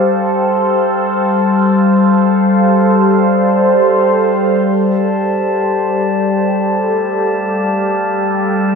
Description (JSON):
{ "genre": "ambient", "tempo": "free time", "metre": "none", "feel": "none", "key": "unclear", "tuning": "A4 = 439 Hz", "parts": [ { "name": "evolving wavetable pad", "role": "sustained chords", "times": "0.0-8.8 s", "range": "G3 to F5", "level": "-11 LUFS", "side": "equal", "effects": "phaser, built-in reverb" }, { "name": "glass harmonica", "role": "texture", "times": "4.7-8.8 s", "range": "A5", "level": "-20 LUFS", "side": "left 1 dB", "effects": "none" }, { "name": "felt-muted upright piano", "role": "arpeggios", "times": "5.6-8.8 s", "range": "A3 to D5", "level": "-34 LUFS", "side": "right 1 dB", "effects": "none" } ], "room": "wet huge ambient reverb, RT60 7.7 s", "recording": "none", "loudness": "-11 LUFS", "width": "side -5 dB against mid", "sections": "0.0-4.7 A section; 4.7-8.8 B section", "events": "none", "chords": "0.0 F/G; 4.7 Gsus2", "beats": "free time" }